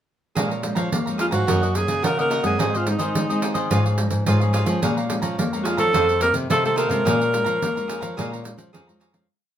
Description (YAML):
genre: samba and choro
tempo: 108 BPM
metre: 4/4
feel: straight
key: Bb minor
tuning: A4 = 440 Hz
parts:
  - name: cavaquinho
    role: accompaniment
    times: 0.4-9.3 s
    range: Eb4 to Bb5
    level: -27 LUFS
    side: right 2 dB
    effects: none
  - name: nylon-string guitar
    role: accompaniment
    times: 0.4-9.3 s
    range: F2 to F4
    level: -29 LUFS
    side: left 1 dB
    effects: none
  - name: nylon-string guitar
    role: bass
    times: 0.4-9.3 s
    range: F2 to Bb3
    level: -24 LUFS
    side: equal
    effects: none
  - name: pandeiro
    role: percussion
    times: 0.4-9.3 s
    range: none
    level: -27 LUFS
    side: right 3 dB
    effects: none
  - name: breathy alto saxophone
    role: melody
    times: 1.2-8.7 s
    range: Eb4 to Bb4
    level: -22 LUFS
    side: equal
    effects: none
room: light reverb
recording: minimal, uncompressed stereo recording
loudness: -19 LUFS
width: side -10 dB against mid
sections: 0.4-9.3 A section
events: fade-out 7.1-9.3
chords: 0.4 Bbm7; 1.5 Gb6; 2.6 Ab; 3.7 Db/Ab; 4.8 Bbm7; 5.9 F7; 7.1 Bbm7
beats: | 0.36 0.92 1.48 2.04 | 2.60 3.15 3.71 4.27 | 4.83 5.38 5.94 6.50 | 7.06 7.62 8.18 8.74